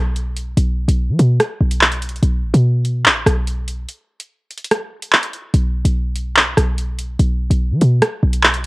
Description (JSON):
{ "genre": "hip hop, drill", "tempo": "145 BPM", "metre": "4/4", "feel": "half-time", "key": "unclear", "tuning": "A4 = 436 Hz", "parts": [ { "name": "short 808-style bass", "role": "bass", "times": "0.0-8.7 s", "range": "A1 to F#3", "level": "-16 LUFS", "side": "equal", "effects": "none" }, { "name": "drill drum kit", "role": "drums", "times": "0.2-8.7 s", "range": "handclaps, hi-hat, rim click", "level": "-15 LUFS", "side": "equal", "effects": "cassette tape" } ], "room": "digital ambience", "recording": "home recording on cassette", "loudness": "-14 LUFS", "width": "side -23 dB against mid", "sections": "0.0-8.7 A section", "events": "break 3.9-5.5", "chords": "none" }